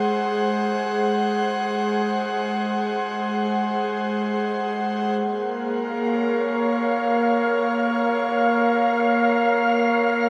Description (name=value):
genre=ambient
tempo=free time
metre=none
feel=none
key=Bb minor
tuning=A4 = 443 Hz
part: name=airy breathy pad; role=sustained chords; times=0.0-10.3 s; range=Ab3 to Gb5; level=-23 LUFS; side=equal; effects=chorus
part: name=wind-like tuned noise texture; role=texture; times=5.7-10.3 s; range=F5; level=-29 LUFS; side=equal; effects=built-in reverb
room=wet shimmer reverb, RT60 7.8 s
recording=none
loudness=-22 LUFS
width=mono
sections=0.0-5.2 A section; 5.2-10.3 B section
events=none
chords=0.0 Ab7; 5.2 Bbm